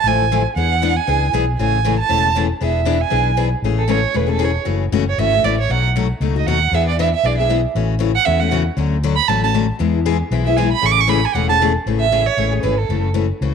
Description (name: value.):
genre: acoustic string swing (jazz manouche).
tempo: 234 BPM.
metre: 4/4.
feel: swing 58% on 8ths.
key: A major.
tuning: A4 = 440 Hz.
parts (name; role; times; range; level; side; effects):
warm violin; melody; 0.0-13.0 s; A4 to D6; -18 LUFS; right 10 dB; none.
fretless electric bass; bass; 0.0-13.5 s; E1 to E2; -19 LUFS; equal; none.
picked steel-string acoustic guitar; accompaniment; 0.1-13.5 s; B2 to G#4; -20 LUFS; left 12 dB; none.
room: moderate spring reverb, RT60 1.5 s, small room reverb.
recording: 1960s-style stereo with parts hard left and right.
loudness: -15 LUFS.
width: side -6 dB against mid.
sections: 0.0-3.6 A section; 3.6-11.9 A section; 11.9-13.5 B section.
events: violin solo 0.0-3.6, 3.6-11.9.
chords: 0.0 Dmadd9; 0.6 E7; 1.6 Amaj7; 2.6 E7; 3.6 Amaj7; 4.7 F#m7; 5.7 B7; 6.7 E7; 7.8 A6; 8.8 Dmaj7; 9.8 E; 10.8 Amaj7; 12.9 F#m7.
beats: 0.05 0.30 | 0.56 0.82 1.07 1.33 | 1.59 1.85 2.10 2.36 | 2.62 2.87 3.13 3.39 | 3.64 3.90 4.16 4.41 | 4.67 4.93 5.18 5.44 | 5.70 5.96 6.21 6.47 | 6.72 6.98 7.24 7.50 | 7.75 8.01 8.27 8.52 | 8.78 9.04 9.29 9.55 | 9.81 10.06 10.32 10.58 | 10.84 11.09 11.35 11.61 | 11.87 12.12 12.38 12.64 | 12.90 13.15 13.41.